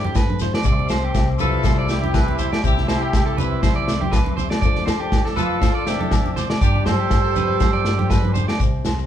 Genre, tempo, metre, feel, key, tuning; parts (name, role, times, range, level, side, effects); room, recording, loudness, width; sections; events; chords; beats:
highlife guitar band; 121 BPM; 4/4; swing 55% on 16ths; C major; A4 = 441 Hz
warm horn section; melody; 0.0-8.4 s; C4 to C5; -25 LUFS; equal
dark trumpet; second line; 0.0-8.4 s; C4 to G4; -30 LUFS; right 3 dB
flamenco guitar; accompaniment; 0.0-9.1 s; C3 to C5; -30 LUFS; left 8 dB
electric guitar at the edge of break-up; arpeggios; 0.0-8.6 s; G4 to D5; -27 LUFS; right 4 dB
upright bass; bass; 0.0-9.1 s; C2 to G2; -24 LUFS; equal
congas; percussion; 0.0-9.0 s; -28 LUFS; right 2 dB
vintage drum kit; drums; 0.2-9.0 s; kick drum, snare drum; -21 LUFS; equal
agogo bells; percussion; 0.2-9.0 s; -32 LUFS; equal
shekere; percussion; 0.2-9.0 s; -30 LUFS; left 7 dB
mellow tonewheel organ; sustained chords; 0.6-8.6 s; D5 to D6; -35 LUFS; equal; slow rotary speaker, chorus vibrato
moderate large studio reverb, RT60 1.0 s; band playing live in one room; -17 LUFS; side -10 dB against mid
0.0-8.6 A section
0.0 Gsus4; 0.7 Cadd9; 4.6 F6; 6.6 G7sus4
0.16 | 0.65 1.15 1.65 2.14 | 2.64 3.14 3.63 4.13 | 4.63 5.12 5.62 6.12 | 6.62 7.11 7.61 8.11 | 8.61